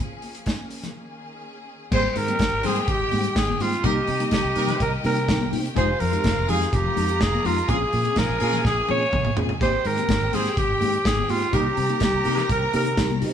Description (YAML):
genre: disco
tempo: 125 BPM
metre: 4/4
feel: straight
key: Ab major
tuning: A4 = 440 Hz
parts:
  - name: clear symphonic string section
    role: sustained chords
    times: 0.0-13.3 s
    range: Db3 to Ab4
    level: -36 LUFS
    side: left 2 dB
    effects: none
  - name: warm soul drum kit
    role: drums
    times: 0.2-13.3 s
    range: crash cymbal, hi-hat, kick drum, snare drum, splash cymbal, toms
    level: -27 LUFS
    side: equal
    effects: none
  - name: congas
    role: percussion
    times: 0.2-13.2 s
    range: none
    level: -34 LUFS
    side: left 4 dB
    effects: none
  - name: growling alto saxophone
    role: melody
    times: 1.9-13.2 s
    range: F4 to Db5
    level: -24 LUFS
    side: equal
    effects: none
  - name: bright studio string section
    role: second line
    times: 1.9-13.3 s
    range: Eb4 to Bb5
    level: -32 LUFS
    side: equal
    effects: none
  - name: mellow tine electric piano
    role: accompaniment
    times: 1.9-13.3 s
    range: Ab2 to Ab4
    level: -28 LUFS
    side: left 1 dB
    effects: medium stereo tremolo
  - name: warm horn section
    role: stabs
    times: 1.9-12.5 s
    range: C4 to C5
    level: -31 LUFS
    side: equal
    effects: none
  - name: fingered electric bass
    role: bass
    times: 1.9-13.3 s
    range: F1 to C3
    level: -27 LUFS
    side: equal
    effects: none
room: moderate stone room reverb, RT60 1.1 s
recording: band playing live in one room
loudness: -20 LUFS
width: side -8 dB against mid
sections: 0.0-1.9 A section; 1.9-13.3 B section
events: break 1.0-1.9; drum fill 8.6-9.6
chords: 0.0 Bbm7; 1.0 Eb7sus4; 1.9 Abmaj7; 3.8 Cm7; 5.8 Fm7; 7.7 Bbm7; 9.6 Abmaj7; 11.5 Cm7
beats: 0.47 0.95 1.44 | 1.92 2.40 2.88 3.36 | 3.84 4.32 4.80 5.28 | 5.76 6.25 6.72 7.21 | 7.69 8.17 8.65 9.13 | 9.61 10.09 10.57 11.05 | 11.53 12.01 12.49 12.97